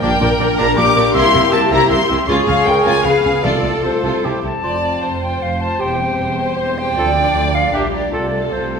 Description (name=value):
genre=classical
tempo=155 BPM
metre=3/4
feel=straight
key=F major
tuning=A4 = 441 Hz
part: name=warm symphonic violin section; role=melody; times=0.0-8.8 s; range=A4 to D6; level=-21 LUFS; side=left 3 dB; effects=none
part: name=dark clarinet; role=second line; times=0.0-8.3 s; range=D4 to Bb4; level=-25 LUFS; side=equal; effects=none
part: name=mellow cor anglais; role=second line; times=0.0-8.3 s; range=G4 to E5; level=-24 LUFS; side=right 1 dB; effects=none
part: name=rich symphonic violin section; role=second line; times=0.0-8.8 s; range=C4 to Cb5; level=-24 LUFS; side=left 2 dB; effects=none
part: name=silver concert flute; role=second line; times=0.0-8.8 s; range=C5 to D6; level=-20 LUFS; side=equal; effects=none
part: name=rich symphonic viola section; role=accompaniment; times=0.0-8.8 s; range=G4 to D5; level=-22 LUFS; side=left 1 dB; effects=none
part: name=dark French horn section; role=sustained chords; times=0.0-8.8 s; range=F3 to Ab4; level=-23 LUFS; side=left 3 dB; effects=none
part: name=mellow tuba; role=bass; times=0.0-4.5 s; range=Bb1 to Db2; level=-25 LUFS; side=right 3 dB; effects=none
part: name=rich symphonic cello section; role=bass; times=0.0-8.8 s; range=D2 to Db3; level=-25 LUFS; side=right 2 dB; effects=none
part: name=rich symphonic double bass section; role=bass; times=0.0-8.8 s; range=E1 to D2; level=-24 LUFS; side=right 3 dB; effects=none
part: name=timpani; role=percussion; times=3.4-4.0 s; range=C3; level=-26 LUFS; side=left 1 dB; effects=none
room=wet scoring stage reverb, RT60 1.7 s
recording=minimal, uncompressed stereo recording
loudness=-13 LUFS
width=side -6 dB against mid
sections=0.0-4.6 A section; 4.6-8.8 B section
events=none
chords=0.0 Gm/Bb; 1.1 C7; 2.3 Db; 3.1 Db7; 3.4 F/C; 4.2 C; 4.6 F; 5.8 C/E; 7.0 Dm; 7.7 Gm/Bb; 8.1 F/C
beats=| 0.02 0.39 0.77 | 1.15 1.53 1.91 | 2.29 2.67 3.05 | 3.45 3.84 4.24 | 4.63 5.03 5.42 | 5.80 6.19 6.58 | 6.97 7.36 7.74 | 8.13 8.53